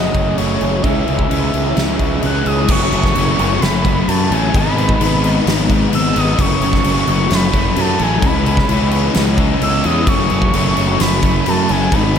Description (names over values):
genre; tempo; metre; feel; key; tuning
rock, shoegaze and dream pop; 130 BPM; 4/4; straight; F# dorian; A4 = 442 Hz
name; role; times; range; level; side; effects
reedy FM lead; melody; 0.0-12.2 s; C#5 to F#6; -21 LUFS; right 1 dB; chorus, ping-pong delay
crunchy overdriven guitar; riff; 0.0-12.2 s; F#2 to D#4; -20 LUFS; right 2 dB; none
electric guitar through a small old amp; riff; 0.0-2.7 s; C#3 to G#4; -24 LUFS; right 8 dB; reverse reverb
overdriven semi-hollow guitar; riff; 0.0-12.2 s; F#2 to D#4; -20 LUFS; left 7 dB; wide subtle chorus
fuzz fingered electric bass; bass; 0.0-12.2 s; F#1 to F#2; -18 LUFS; equal; overdrive
big rock drum kit; drums; 0.1-12.2 s; crash cymbal, kick drum, snare drum; -19 LUFS; equal; none
room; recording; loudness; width
light reverb, small room reverb; none; -12 LUFS; side -8 dB against mid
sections
0.0-2.7 A section; 2.7-12.2 B section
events
none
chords
0.0 F#madd9; 0.8 C#m; 2.7 F#m; 4.5 G#m; 6.4 F#m; 8.2 C#m; 10.1 F#m